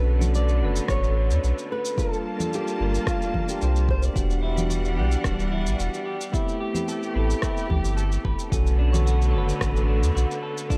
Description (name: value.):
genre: sunset chillout.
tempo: 110 BPM.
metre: 4/4.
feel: straight.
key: unclear.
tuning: A4 = 437 Hz.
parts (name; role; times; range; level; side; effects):
flamenco guitar; melody; 0.0-4.2 s; F4 to D5; -34 LUFS; equal; delay.
soft electric-piano-like synth keys; accompaniment; 0.0-10.8 s; D3 to F#5; -33 LUFS; equal; chorus, tape echo.
clear studio string section; sustained chords; 0.0-10.8 s; D3 to A5; -35 LUFS; equal; none.
warm sub bass; bass; 0.0-10.3 s; D1 to E2; -24 LUFS; equal; none.
electronic shaker and rim click; drums; 0.2-10.8 s; none; -37 LUFS; equal; none.
congas; percussion; 0.2-9.0 s; none; -35 LUFS; equal; none.
electronic kick drum; drums; 0.9-10.8 s; none; -30 LUFS; equal; none.
semi-hollow electric guitar; arpeggios; 4.2-10.8 s; C#4 to B4; -37 LUFS; equal; vintage 12-bit sampler grit, tape echo.
room: light reverb.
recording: dark, warm production.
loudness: -24 LUFS.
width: mono.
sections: 0.0-10.8 A section.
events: none.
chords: 0.0 Bm9; 2.0 Gm9; 4.2 Em9; 6.3 Am9; 8.5 Bm9.